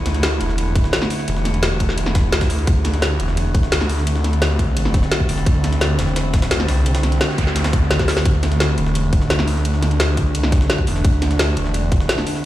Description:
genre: dark technical drum and bass.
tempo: 172 BPM.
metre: 4/4.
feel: straight.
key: unclear.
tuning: A4 = 440 Hz.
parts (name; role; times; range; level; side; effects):
metallic inharmonic drone; sustained chords; 0.0-12.5 s; D3 to E4; -23 LUFS; right 1 dB; chorus, built-in reverb, sidechain pumping.
snarling distorted saw bass; bass; 0.0-12.1 s; E1 to D2; -19 LUFS; equal; distortion, overdrive, sidechain pumping.
drum and bass drum kit; drums; 0.1-12.3 s; hi-hat, snare drum; -22 LUFS; equal; none.
jungle sampler-style drum kit; drums; 0.1-12.4 s; ride cymbal, snare drum; -31 LUFS; equal; high-pass filter on cymbals, high-pass filter on snare.
electronic kick drum; drums; 0.8-12.0 s; none; -17 LUFS; equal; overdrive.
noise sweep; sound effects; 7.1-8.3 s; none; -31 LUFS; right 1 dB; none.
room: light reverb, digital ambience.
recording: played on a big sound system in a bare room, large studio reverb.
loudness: -16 LUFS.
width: side -14 dB against mid.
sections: 0.0-12.5 A section.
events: noise sweep 7.1-8.3; drum fill 8.0.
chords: 0.0 D5.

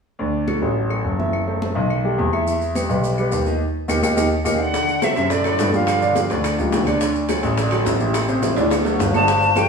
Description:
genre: Afro-Cuban jazz.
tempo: 212 BPM.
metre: 4/4.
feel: straight.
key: D major.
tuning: A4 = 444 Hz.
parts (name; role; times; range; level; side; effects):
clear concert grand piano; accompaniment; 0.2-9.7 s; C3 to E5; -23 LUFS; right 1 dB; none.
clear concert grand piano; bass; 0.2-9.6 s; F#1 to G2; -22 LUFS; left 1 dB; none.
congas; percussion; 0.2-9.7 s; none; -29 LUFS; left 1 dB; none.
claves; percussion; 0.5-9.7 s; none; -33 LUFS; left 4 dB; none.
maracas; percussion; 2.5-9.7 s; none; -35 LUFS; right 3 dB; none.
breathy bright jazz flute; melody; 4.5-6.3, 9.1-9.7 s; D5 to A5; -20 LUFS; left 1 dB; none.
mellow tenor saxophone; second line; 4.5-6.3, 9.2-9.7 s; A2 to F3; -26 LUFS; right 4 dB; none.
bongos; percussion; 4.7-9.7 s; none; -28 LUFS; left 2 dB; none.
timbales; percussion; 4.7-9.7 s; none; -27 LUFS; right 3 dB; none.
room: wet stone room reverb, RT60 1.1 s.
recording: band playing live in one room, studio reverb.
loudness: -17 LUFS.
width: side -5 dB against mid.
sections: 0.2-4.7 A section; 4.7-9.7 B section.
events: band accent 3.6-4.7; drum fill 8.6-9.3.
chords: 0.2 Dadd9; 1.3 F#m7b5; 1.9 Baug7; 2.5 Em; 3.6 Eb; 4.7 D7; 5.9 G5; 7.0 D; 8.1 Am7; 8.7 D.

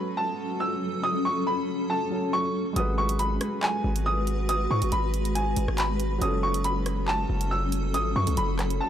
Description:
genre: hip hop, drill.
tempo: 139 BPM.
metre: 4/4.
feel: half-time.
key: unclear.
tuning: A4 = 440 Hz.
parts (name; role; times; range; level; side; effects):
warm upright piano; melody; 0.0-8.9 s; G#5 to E6; -28 LUFS; right 1 dB; low-pass filter, analog delay.
dark baby grand piano; accompaniment; 0.0-8.9 s; F#3 to B4; -35 LUFS; right 2 dB; low-pass filter.
granular cloud pad; sustained chords; 0.0-8.9 s; F#3 to B4; -30 LUFS; left 1 dB; built-in reverb.
hard-hitting 808-style bass; bass; 2.8-8.8 s; F#1 to G#2; -27 LUFS; equal; none.
drill drum kit; drums; 2.8-8.8 s; handclaps, hi-hat, rim click; -31 LUFS; equal; none.
room: little or no reverb.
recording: dry, gritty hardware recording.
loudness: -24 LUFS.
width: side -10 dB against mid.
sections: 0.0-8.9 A section.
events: none.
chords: 0.0 F#m; 2.8 G#m7; 6.2 F#m.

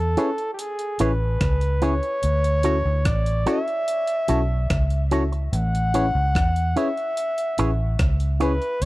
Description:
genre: lovers rock reggae.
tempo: 73 BPM.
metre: 4/4.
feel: straight.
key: A major.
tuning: A4 = 440 Hz.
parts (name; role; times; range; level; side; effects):
warm flugelhorn; melody; 0.0-8.9 s; G4 to F#5; -25 LUFS; equal; tape echo.
vintage muted fingered electric bass; bass; 0.0-8.9 s; A1 to E2; -22 LUFS; equal; none.
FM electric piano; accompaniment; 0.2-8.5 s; C#4 to B4; -25 LUFS; left 2 dB; chorus.
electric guitar with an envelope filter; stabs; 0.2-8.5 s; E4 to C#5; -27 LUFS; right 4 dB; none.
breakbeat sampler-style drum kit; drums; 0.2-8.9 s; hi-hat, kick drum, rim click; -25 LUFS; equal; none.
room: digital ambience.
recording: dry, close 1970s-style studio recording.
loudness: -20 LUFS.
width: side -18 dB against mid.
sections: 0.0-8.9 A section.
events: none.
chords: 0.0 Amaj7; 2.2 Dmaj7; 5.5 Amaj7.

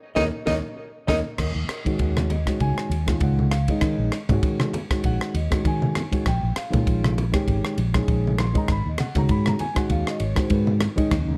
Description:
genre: electric jazz fusion.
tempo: 99 BPM.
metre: 4/4.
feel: swing 56% on 16ths.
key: Eb minor.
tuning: A4 = 441 Hz.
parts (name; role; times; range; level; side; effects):
clear tenor saxophone; melody; 0.2-1.2 s; Eb4; -30 LUFS; equal; tape echo.
vintage hollow-body jazz guitar; second line; 0.2-1.2 s; Bb4 to Eb5; -35 LUFS; equal; tape echo.
dark concert grand piano; accompaniment; 0.2-11.1 s; Eb3 to C6; -29 LUFS; equal; none.
fingered electric bass; bass; 0.2-11.4 s; Ab1 to Eb3; -26 LUFS; equal; none.
crisp fusion drum kit; drums; 0.2-11.3 s; crash cymbal, kick drum, ride cymbal, rim click, snare drum; -28 LUFS; equal; none.
congas; percussion; 0.2-11.0 s; none; -30 LUFS; equal; none.
chorused pulse-width pad; sustained chords; 11.1-11.4 s; Db3 to Eb4; -31 LUFS; equal; none.
room: little or no reverb.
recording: dark, warm production.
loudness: -23 LUFS.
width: mono.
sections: 0.0-1.4 A section; 1.4-11.4 B section.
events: drum fill 0.0-1.4; band accent 0.0-1.4.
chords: 0.0 Eb5; 1.4 Ebm11; 6.3 Bbm7; 8.7 Ab7sus4.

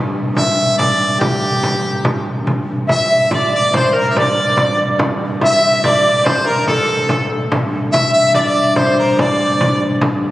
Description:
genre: medieval dance.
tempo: 143 BPM.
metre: 3/4.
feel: straight.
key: G dorian.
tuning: A4 = 440 Hz.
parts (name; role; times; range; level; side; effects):
warm viola da gamba; drone; 0.0-10.3 s; G2; -22 LUFS; equal; none.
bright harmonica; melody; 0.4-9.8 s; G4 to E5; -18 LUFS; equal; none.
frame drum; percussion; 0.4-10.2 s; none; -19 LUFS; equal; none.
bright reedy tenor recorder; second line; 2.9-9.8 s; A4 to E5; -16 LUFS; equal; none.
room: wet church reverb, RT60 2.7 s.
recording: recorded on a phone in the room, club reverb.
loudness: -12 LUFS.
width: side -16 dB against mid.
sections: 0.0-2.5 A section; 2.5-10.3 A section.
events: none.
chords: none.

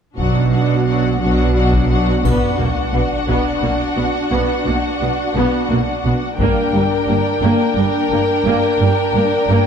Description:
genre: cinematic, epic orchestral film score.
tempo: 58 BPM (dotted quarters).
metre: 6/8.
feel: straight.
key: B harmonic minor.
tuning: A4 = 440 Hz.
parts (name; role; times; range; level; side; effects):
rich symphonic violin section; second line; 0.2-9.7 s; F#4 to G5; -20 LUFS; left 3 dB; none.
rich symphonic viola section; accompaniment; 0.2-9.7 s; F#3 to D4; -19 LUFS; equal; none.
clear studio cello section; bass; 0.2-9.6 s; G2 to B2; -20 LUFS; right 2 dB; none.
clear symphonic double bass section; bass; 0.2-9.6 s; G1 to B1; -22 LUFS; right 2 dB; none.
taiko ensemble; drums; 0.2-7.7 s; none; -23 LUFS; left 2 dB; none.
sub drop; sound effects; 2.2-4.3 s; none; -26 LUFS; left 2 dB; none.
triangle; percussion; 2.3-3.6 s; none; -44 LUFS; left 6 dB; none.
room: moderate concert hall reverb, RT60 2.2 s.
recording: dark, warm production.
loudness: -14 LUFS.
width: side -7 dB against mid.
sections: 0.2-2.2 A section; 2.2-9.7 B section.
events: build-up 2.2-9.7; impact 2.2-4.3.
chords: 0.2 Bm; 6.4 Gm.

